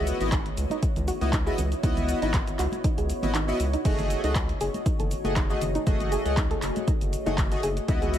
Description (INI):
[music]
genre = deep house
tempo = 119 BPM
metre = 4/4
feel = swing 54% on 16ths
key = F# dorian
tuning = A4 = 440 Hz
[part]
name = deep dark ambient pad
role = sustained chords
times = 0.0-8.2 s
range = A3 to D#5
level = -34 LUFS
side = left 1 dB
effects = chorus, built-in reverb, sidechain pumping
[part]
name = soft round pluck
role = arpeggios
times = 0.0-8.1 s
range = D#4 to A4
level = -34 LUFS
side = right 2 dB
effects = chorus, sidechain pumping, tape echo
[part]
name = chorused polysynth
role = stabs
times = 0.0-8.2 s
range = A3 to D#5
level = -31 LUFS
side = left 1 dB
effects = sidechain pumping, tape echo
[part]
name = round analog bass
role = bass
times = 0.0-8.2 s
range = F#1 to C#2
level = -29 LUFS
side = equal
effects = sidechain pumping
[part]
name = punchy analog drum machine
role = drums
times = 0.1-8.2 s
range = cabasa, crash cymbal, handclaps, hi-hat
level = -35 LUFS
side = equal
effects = none
[part]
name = electronic kick drum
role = drums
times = 0.3-8.0 s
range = none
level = -27 LUFS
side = equal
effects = overdrive
[part]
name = congas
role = percussion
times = 0.7-8.1 s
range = none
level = -37 LUFS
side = right 2 dB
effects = none
[sound]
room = digital ambience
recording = none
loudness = -23 LUFS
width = side -11 dB against mid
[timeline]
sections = 0.0-8.2 A section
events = kick drops out 3.3-3.9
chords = 0.0 C#m11; 3.9 F#m69